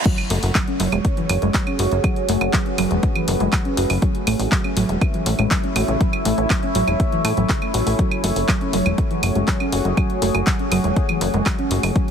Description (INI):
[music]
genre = melodic techno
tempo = 121 BPM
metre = 4/4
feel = straight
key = F# minor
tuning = A4 = 441 Hz
[part]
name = reverse cymbal and impact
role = sound effects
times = 0.0-2.0 s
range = none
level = -31 LUFS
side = right 1 dB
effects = none
[part]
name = deep dark ambient pad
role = sustained chords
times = 0.1-12.1 s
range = A3 to E5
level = -24 LUFS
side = right 1 dB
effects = chorus, built-in reverb, sidechain pumping
[part]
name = soft round pluck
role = arpeggios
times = 0.1-12.0 s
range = C#3 to A4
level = -24 LUFS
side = equal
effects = wide subtle chorus, sidechain pumping, digital delay
[part]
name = deep house drum kit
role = drums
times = 0.1-12.1 s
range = claves, crash cymbal, handclaps, hi-hat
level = -26 LUFS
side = right 1 dB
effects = high-pass filter on snare, high-pass filter on hats, high-pass filter on perc, high-pass filter on cymbals, high-pass filter on room
[part]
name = electronic kick drum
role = drums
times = 0.1-12.1 s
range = none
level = -20 LUFS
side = equal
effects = overdrive
[part]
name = plucky analog bass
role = bass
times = 0.3-11.9 s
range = E1 to A2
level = -21 LUFS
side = equal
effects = sidechain pumping
[sound]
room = light reverb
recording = heavily compressed radio sound, multiband compression, high-pass filter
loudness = -17 LUFS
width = side -7 dB against mid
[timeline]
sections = 0.1-12.1 A section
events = drop 0.1-12.1; impact 0.1-2.0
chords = 0.1 F#madd9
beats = | 0.06 0.55 1.05 1.54 | 2.04 2.54 3.03 3.53 | 4.02 4.52 5.01 5.51 | 6.01 6.50 7.00 7.49 | 7.99 8.48 8.98 9.48 | 9.97 10.47 10.96 11.46 | 11.96